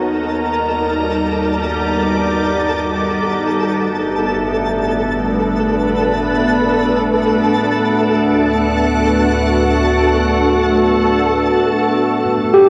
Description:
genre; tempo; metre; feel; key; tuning
ambient; free time; none; none; unclear; A4 = 438 Hz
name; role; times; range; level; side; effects
soft additive organ-like pad; sustained chords; 0.0-12.7 s; G3 to F#5; -18 LUFS; equal; ensemble chorus, built-in reverb, shimmer reverb
round analog bass; bass; 0.0-12.0 s; G1 to D#2; -28 LUFS; equal; none
organ-like drone; drone; 0.1-12.7 s; B3 to F#4; -25 LUFS; equal; ensemble chorus, built-in reverb
twinkling granular texture; texture; 0.0-12.7 s; A4 to A5; -24 LUFS; equal; built-in reverb, shimmer reverb
tine electric piano; arpeggios; 12.5-12.7 s; G4; -10 LUFS; equal; none
room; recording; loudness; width
wet spring reverb, RT60 2.6 s; home recording on cassette; -16 LUFS; mono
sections
0.0-12.0 A section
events
fade-in on analog synth bass 0.0-12.0; fade-in on synth drone 0.0-12.0; fade-in on synth texture 0.0-12.0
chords
0.0 D#maj7; 3.6 Gadd9; 7.8 D; 12.0 D#add9

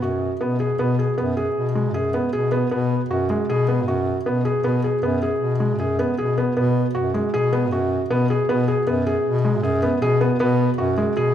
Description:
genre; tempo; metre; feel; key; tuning
contemporary instrumental, chamber music in an uneven meter; 156 BPM; 5/4; straight; unclear; A4 = 440 Hz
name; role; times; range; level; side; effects
felt-muted upright piano; arpeggios; 0.0-11.3 s; G#3 to G#4; -21 LUFS; right 1 dB; none
clear bass clarinet; bass; 0.0-11.3 s; F#2 to B2; -22 LUFS; left 2 dB; none
room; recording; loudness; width
wet scoring stage reverb, RT60 1.6 s; minimal, uncompressed stereo recording; -18 LUFS; side -10 dB against mid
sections
0.0-11.3 A section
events
none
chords
0.0 B5

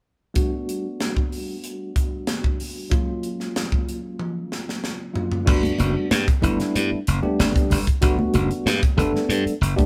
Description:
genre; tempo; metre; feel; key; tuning
electric jazz fusion; 94 BPM; 4/4; straight; G lydian; A4 = 440 Hz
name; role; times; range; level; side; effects
tine electric piano; accompaniment; 0.3-9.9 s; F#3 to A4; -28 LUFS; equal; none
crisp fusion drum kit; drums; 0.4-9.9 s; crash cymbal, hi-hat, kick drum, snare drum, toms; -25 LUFS; equal; none
glassy slap bass; bass; 5.5-9.8 s; F#1 to G2; -24 LUFS; equal; none
congas; percussion; 5.6-9.9 s; none; -29 LUFS; equal; none
room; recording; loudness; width
light reverb; band playing live in one room; -23 LUFS; mono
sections
0.4-5.5 A section; 5.5-9.9 B section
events
drum fill 4.2-5.5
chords
0.4 Gmaj9; 2.9 F#maj9; 5.5 Gmaj9

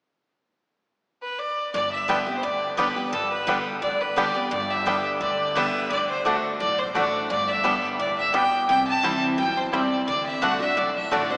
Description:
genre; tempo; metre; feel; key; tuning
bluegrass; 173 BPM; 4/4; straight; G major; A4 = 440 Hz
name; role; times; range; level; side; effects
clear fiddle; melody; 1.2-11.4 s; A4 to A5; -27 LUFS; equal; none
picked steel-string acoustic guitar; accompaniment; 1.7-11.4 s; G2 to G4; -30 LUFS; equal; none
upright bass; bass; 1.7-11.4 s; G1 to D2; -44 LUFS; equal; none
bluegrass banjo; melody; 2.1-11.2 s; G3 to E4; -34 LUFS; equal; none
mandolin; stabs; 2.1-11.2 s; A3 to G5; -31 LUFS; equal; none
room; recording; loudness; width
wet cathedral reverb, RT60 4.8 s; recorded in a church or concert hall, small speaker sound; -24 LUFS; mono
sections
0.3-1.7 A section; 1.7-11.4 B section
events
none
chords
0.3 N.C.; 1.7 G; 5.9 D; 7.3 G; 8.7 C; 10.1 D

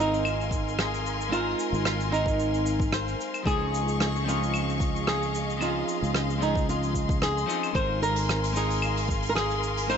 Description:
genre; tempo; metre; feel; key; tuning
sunset chillout; 112 BPM; 4/4; swing 54% on 16ths; Ab major; A4 = 440 Hz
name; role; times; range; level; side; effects
flamenco guitar; melody; 0.0-10.0 s; Eb4 to C5; -29 LUFS; right 1 dB; tape echo
clean electric guitar; accompaniment; 0.0-10.0 s; F3 to Bb4; -33 LUFS; moving between left 5 dB and right 8 dB; auto-pan, low-pass filter, digital delay
rich studio string section; sustained chords; 0.0-10.0 s; Ab4 to Db6; -33 LUFS; left 4 dB; none
sustaining fretless electric bass; bass; 0.0-10.0 s; Ab1 to Db2; -30 LUFS; equal; ensemble chorus
soft brush drum kit; drums; 0.0-10.0 s; cabasa, claves, hi-hat, rim click; -33 LUFS; right 1 dB; none
electronic kick drum; drums; 0.5-9.2 s; none; -29 LUFS; equal; overdrive
room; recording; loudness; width
light reverb, small room ambience; nothing above 8.0 kHz; -24 LUFS; side -7 dB against mid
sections
0.0-10.0 A section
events
none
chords
0.0 Ab69; 3.5 Dbmaj9; 7.7 Ab69

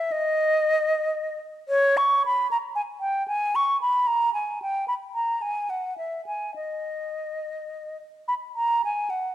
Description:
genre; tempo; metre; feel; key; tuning
classical, baroque-style fantasia for unaccompanied flute; 67-78 BPM (dotted quarters); 6/8; rubato; unclear; A4 = 441 Hz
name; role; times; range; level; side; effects
mellow silver concert flute; solo; 0.0-9.3 s; C#5 to C#6; -23 LUFS; equal; none
room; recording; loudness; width
moderate recital hall reverb, RT60 1.6 s; dark, warm production; -23 LUFS; side -13 dB against mid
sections
0.0-8.3 A section; 8.3-9.3 A section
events
none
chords
none

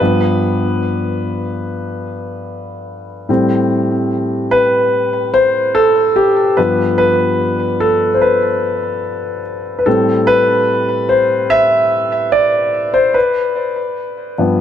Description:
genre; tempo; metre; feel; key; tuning
R&B; 73 BPM; 4/4; straight; unclear; A4 = 440 Hz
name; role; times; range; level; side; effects
warm concert grand piano; solo; 0.0-14.6 s; G2 to E5; -13 LUFS; left 1 dB; digital delay
room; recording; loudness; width
moderate lush hall reverb, RT60 2.4 s; none; -12 LUFS; side -9 dB against mid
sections
0.0-14.6 A section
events
grand piano solo 0.0-14.6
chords
0.0 G7; 3.3 Am9; 6.6 G7; 9.9 Am9; 13.2 G7

